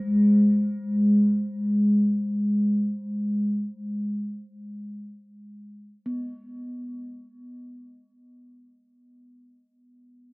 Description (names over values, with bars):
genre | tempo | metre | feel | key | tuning
world meditative, free-time meditation music | free time | none | none | G# minor pentatonic | A4 = 440 Hz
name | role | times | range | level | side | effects
bronze singing bowl | solo | 0.0-9.2 s | G#3 to B3 | -23 LUFS | equal | none
room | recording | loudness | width
moderate huge ambient reverb, RT60 4.9 s | AM radio sound | -21 LUFS | side -28 dB against mid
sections
0.0-8.8 A section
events
fade-out 0.0-8.8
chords
none